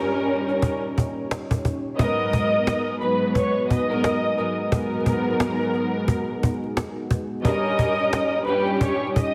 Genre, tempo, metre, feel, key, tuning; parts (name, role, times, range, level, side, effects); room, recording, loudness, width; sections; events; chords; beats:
hip hop, boom-bap hip-hop; 88 BPM; 4/4; swing 58% on 16ths; G# minor; A4 = 441 Hz
warm studio string section; accompaniment; 0.0-9.3 s; G2 to B4; -27 LUFS; equal; high-pass filter, low-pass filter
dark analog pad; sustained chords; 0.0-9.3 s; G2 to C#5; -33 LUFS; equal; chorus, high-pass filter, low-pass filter
cajon; drums; 0.5-9.3 s; -27 LUFS; equal
warm studio violin section; melody; 2.0-9.3 s; B4 to D#6; -27 LUFS; equal; high-pass filter, low-pass filter, delay
moderate echo chamber reverb, RT60 2.0 s; vinyl crackle; -23 LUFS; mono
0.0-9.3 A section
0.0 D#7/G; 2.0 G#m9; 7.4 D#7/G
0.63 1.31 | 1.99 2.67 3.35 4.04 | 4.72 5.40 6.08 6.76 | 7.45 8.13 8.81